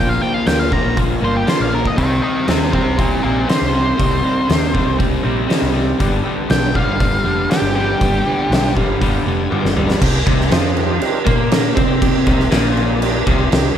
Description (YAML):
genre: blues rock power trio and southern rock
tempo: 119 BPM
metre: 4/4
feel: straight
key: C minor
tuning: A4 = 440 Hz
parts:
  - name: octave-fuzz lead guitar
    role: melody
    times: 0.0-8.7 s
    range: F4 to Bb5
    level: -21 LUFS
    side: equal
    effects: distortion
  - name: overdriven tonewheel organ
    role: sustained chords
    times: 0.0-13.7 s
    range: F3 to B5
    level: -27 LUFS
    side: right 3 dB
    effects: slow rotary speaker
  - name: crunchy overdriven guitar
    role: riff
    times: 0.0-13.7 s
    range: G2 to C4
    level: -19 LUFS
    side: left 1 dB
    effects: none
  - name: woody fretless electric bass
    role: bass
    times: 0.0-13.8 s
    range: F1 to C3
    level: -21 LUFS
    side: equal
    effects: none
  - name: oversized low-tuned drum kit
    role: drums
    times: 0.5-13.6 s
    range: crash cymbal, hi-hat, kick drum, snare drum, toms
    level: -18 LUFS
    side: equal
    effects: none
room: light reverb, small room ambience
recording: none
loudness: -14 LUFS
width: side -9 dB against mid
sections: 0.0-10.0 A section; 10.0-13.8 B section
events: tonewheel organ fill 8.5-10.0; drum fill 9.5-10.0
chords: 0.0 Bb; 2.0 Cm; 6.0 G; 10.0 Cm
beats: 0.47 0.97 1.48 | 1.98 2.48 2.98 3.49 | 3.99 4.49 4.99 5.50 | 6.00 6.50 7.00 7.51 | 8.01 8.51 9.01 9.52 | 10.02 10.52 11.02 11.52 | 12.02 12.52 13.01 13.51